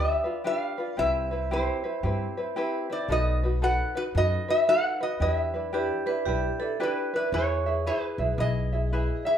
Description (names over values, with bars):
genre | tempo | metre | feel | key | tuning
Hawaiian | 113 BPM | 4/4 | swing 63% on 8ths | E minor | A4 = 440 Hz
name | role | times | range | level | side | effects
lap resonator guitar | melody | 0.0-9.4 s | B4 to F#5 | -27 LUFS | equal | none
tenor ukulele | accompaniment | 0.0-9.4 s | C4 to E5 | -30 LUFS | equal | none
upright bass | bass | 0.0-9.1 s | B1 to G2 | -28 LUFS | equal | none
vibraphone with medium hard mallets | second line | 5.7-7.3 s | G4 to B4 | -31 LUFS | right 5 dB | none
room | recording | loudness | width
moderate large studio reverb, RT60 0.8 s | band playing live in one room | -24 LUFS | side -9 dB against mid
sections
0.0-7.3 A section; 7.3-9.4 B section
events
none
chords
0.0 G7; 1.0 Cmaj7; 3.1 B7; 5.2 Em7; 7.3 E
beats
0.45 | 0.98 1.51 2.04 2.57 | 3.10 3.62 4.15 4.68 | 5.21 5.74 6.27 6.80 | 7.33 7.86 8.39 8.91